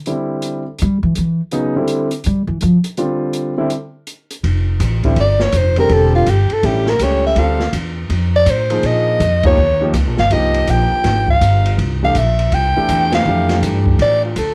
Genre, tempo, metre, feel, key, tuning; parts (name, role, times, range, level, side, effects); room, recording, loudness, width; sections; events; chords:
jazz, small-group swing and bop; 164 BPM; 4/4; swing 64% on 8ths; F major; A4 = 441 Hz
warm concert grand piano; accompaniment; 0.1-14.3 s; Db3 to A4; -22 LUFS; equal; cassette tape
open jazz drum kit; drums; 0.1-14.5 s; hi-hat, kick drum, ride cymbal, snare drum; -25 LUFS; equal
upright bass; bass; 0.8-14.5 s; E1 to G3; -18 LUFS; equal
growling soprano saxophone; melody; 5.2-14.5 s; F4 to G5; -18 LUFS; equal; cassette tape
moderate studio reverb, RT60 0.5 s; home recording on cassette; -16 LUFS; mono
0.0-4.4 A section; 4.4-14.5 B section
upright bass solo 0.0-4.4; band accent 9.4, 13.1
0.1 C; 1.5 Fsus2 (rootless); 3.0 G5; 3.7 N.C.; 4.4 F69; 5.9 Fmaj13/E; 6.6 A7; 7.4 Dm9; 8.8 Bb5; 9.6 Eb7; 10.3 Abmaj7; 11.8 C7; 13.3 F69